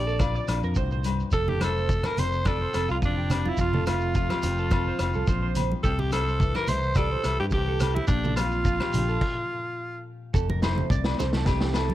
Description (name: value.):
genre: highlife guitar band.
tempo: 106 BPM.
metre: 4/4.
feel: straight.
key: F major.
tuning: A4 = 441 Hz.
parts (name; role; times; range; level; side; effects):
raspy alto saxophone; melody; 0.0-10.0 s; D4 to D5; -29 LUFS; equal; none.
nylon-string guitar; accompaniment; 0.0-11.9 s; F2 to A4; -35 LUFS; left 7 dB; none.
electric guitar through a small old amp; arpeggios; 0.0-11.9 s; F4 to D5; -33 LUFS; right 9 dB; analog chorus, tape echo.
fingered electric bass; bass; 0.0-11.9 s; F1 to G2; -28 LUFS; equal; none.
shekere; percussion; 0.1-11.9 s; none; -31 LUFS; right 1 dB; none.
vintage drum kit; drums; 0.2-11.9 s; crash cymbal, hi-hat, kick drum, rim click, snare drum; -29 LUFS; equal; none.
agogo bells; percussion; 0.2-11.9 s; none; -36 LUFS; left 12 dB; none.
congas; percussion; 1.5-11.9 s; none; -32 LUFS; right 2 dB; none.
room: little or no reverb.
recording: none.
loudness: -23 LUFS.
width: side -14 dB against mid.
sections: 0.0-10.3 A section; 10.3-11.9 B section.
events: stop 9.2-10.3.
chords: 0.0 Bbadd9; 1.3 F; 5.8 C; 8.1 Bbsus2; 10.3 F.